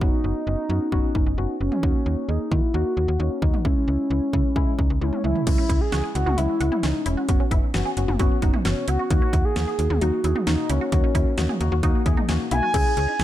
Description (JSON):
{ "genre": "synth-pop", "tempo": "132 BPM", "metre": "4/4", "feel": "straight", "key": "unclear", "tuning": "A4 = 440 Hz", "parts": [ { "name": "mellow horn-like synth lead", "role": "melody", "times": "0.0-13.2 s", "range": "C#4 to G#5", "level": "-26 LUFS", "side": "equal", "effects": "chorus, ping-pong delay" }, { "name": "muted felt-like synth keys", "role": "accompaniment", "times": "0.0-13.2 s", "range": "G#3 to G#4", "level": "-28 LUFS", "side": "left 2 dB", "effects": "chorus, phaser" }, { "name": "slap-like FM bass", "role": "bass", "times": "0.0-13.2 s", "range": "E1 to D#3", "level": "-24 LUFS", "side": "equal", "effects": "none" }, { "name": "pop drum kit", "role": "drums", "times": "0.0-13.2 s", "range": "cowbell, crash cymbal, hi-hat, kick drum, snare drum, toms", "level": "-23 LUFS", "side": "equal", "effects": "none" }, { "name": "resonant blip pluck", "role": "arpeggios", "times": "5.6-13.2 s", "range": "C#4 to G#4", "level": "-33 LUFS", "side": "right 2 dB", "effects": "chorus, phaser, ping-pong delay" } ], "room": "digital ambience", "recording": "none", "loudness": "-20 LUFS", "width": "side -13 dB against mid", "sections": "0.0-5.5 A section; 5.5-12.7 B section", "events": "drum fill 5.0-5.5", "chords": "0.0 F#sus4; 1.8 D#m7; 3.7 C#m; 7.3 F#sus4; 9.1 D#m7" }